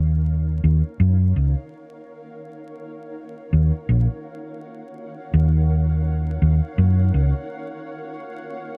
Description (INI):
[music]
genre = ambient dub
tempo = 83 BPM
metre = 4/4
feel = swing 55% on 16ths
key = Eb minor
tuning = A4 = 440 Hz
[part]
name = granular cloud pad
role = sustained chords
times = 0.0-8.8 s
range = Eb4 to Ab5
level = -38 LUFS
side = equal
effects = built-in reverb
[part]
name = hollow-body short-scale fingered electric bass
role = bass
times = 0.0-7.3 s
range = Bb1 to Gb2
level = -19 LUFS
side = equal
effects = none
[sound]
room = little or no reverb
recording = vinyl crackle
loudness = -20 LUFS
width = mono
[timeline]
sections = 0.0-8.8 A section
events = fade-in on ambient pad 0.0-8.8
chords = 0.0 Ebm9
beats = 0.28 1.00 1.72 | 2.44 3.17 3.89 4.61 | 5.34 6.06 6.78 7.50 | 8.23